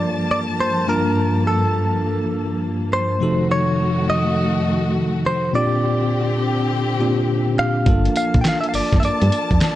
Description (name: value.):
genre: R&B, new jack swing.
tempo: 103 BPM.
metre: 4/4.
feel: swing 65% on 16ths.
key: G minor.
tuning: A4 = 440 Hz.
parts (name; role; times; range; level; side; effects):
direct-recorded clean electric guitar; melody; 0.0-9.8 s; A4 to G5; -23 LUFS; equal; none.
bell-like tine electric piano; accompaniment; 0.0-9.8 s; G2 to A5; -21 LUFS; left 1 dB; fast stereo tremolo.
warm studio string section; sustained chords; 0.0-9.8 s; F2 to A5; -24 LUFS; equal; none.
solid FM bass; bass; 7.9-9.6 s; G1 to G2; -18 LUFS; right 1 dB; none.
dusty soul sampler-style drum kit; drums; 7.9-9.8 s; handclaps, hi-hat, kick drum, snare drum, tambourine; -19 LUFS; equal; none.
room: little or no reverb.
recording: dark, warm production.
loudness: -17 LUFS.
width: side -14 dB against mid.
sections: 0.0-9.8 A section.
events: none.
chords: 0.0 Gm9; 3.2 F7b9; 5.5 Bb69; 7.9 Gm9.